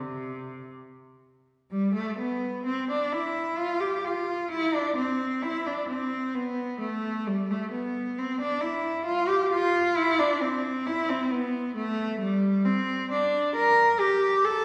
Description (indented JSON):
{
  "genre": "classical, baroque-style suite movement for unaccompanied cello",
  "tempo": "66 BPM",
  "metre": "3/4",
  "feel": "rubato",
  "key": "C major",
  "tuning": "A4 = 439 Hz",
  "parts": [
    { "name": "rich cello", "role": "solo", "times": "0.0-14.6 s", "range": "C3 to Bb4", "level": "-27 LUFS", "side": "equal", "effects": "none" }
  ],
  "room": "wet scoring stage reverb, RT60 1.8 s",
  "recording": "heard from further back in the room",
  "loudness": "-27 LUFS",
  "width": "mono",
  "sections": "0.0-1.7 A section; 1.7-14.6 B section",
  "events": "none",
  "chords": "none",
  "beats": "0.74 | 1.71 2.65 3.57 | 4.50 5.43 6.35 | 7.26 8.17 9.07 | 9.96 10.86 11.75 | 12.65 13.55 14.44"
}